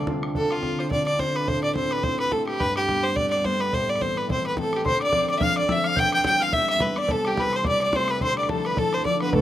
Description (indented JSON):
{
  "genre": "celtic folk, Celtic reel",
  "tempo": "214 BPM",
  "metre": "4/4",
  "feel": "swing 56% on 8ths",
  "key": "D dorian",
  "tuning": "A4 = 439 Hz",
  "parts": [
    { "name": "clear fiddle", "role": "melody", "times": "0.0-9.4 s", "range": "F4 to G5", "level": "-23 LUFS", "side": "equal", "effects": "slapback echo" },
    { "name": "cimbalom", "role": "second line", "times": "0.0-2.8, 9.2-9.4 s", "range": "A3 to G4", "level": "-34 LUFS", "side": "right 2 dB", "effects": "none" },
    { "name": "reedy mid whistle", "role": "second line", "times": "0.0, 4.9-9.4 s", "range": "G5 to G6", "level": "-28 LUFS", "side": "left 4 dB", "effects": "none" },
    { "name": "concert harp", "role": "accompaniment", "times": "0.0-9.4 s", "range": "C2 to G4", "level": "-28 LUFS", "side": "left 1 dB", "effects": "none" },
    { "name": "upright bass", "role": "bass", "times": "0.0-0.3, 9.3-9.4 s", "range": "D2", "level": "-29 LUFS", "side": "equal", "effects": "none" },
    { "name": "bodhran", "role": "percussion", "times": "0.1-9.4 s", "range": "none", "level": "-31 LUFS", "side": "right 1 dB", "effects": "none" }
  ],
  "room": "little or no reverb",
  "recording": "recorded outdoors, with no room sound",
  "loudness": "-21 LUFS",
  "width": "side -12 dB against mid",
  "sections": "0.4-9.3 A section",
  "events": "none",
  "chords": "0.4 Dm7; 1.5 Am; 2.6 Gadd9; 3.7 Am; 4.8 Dm7; 6.0 Em; 7.1 C6; 8.2 Dmadd9"
}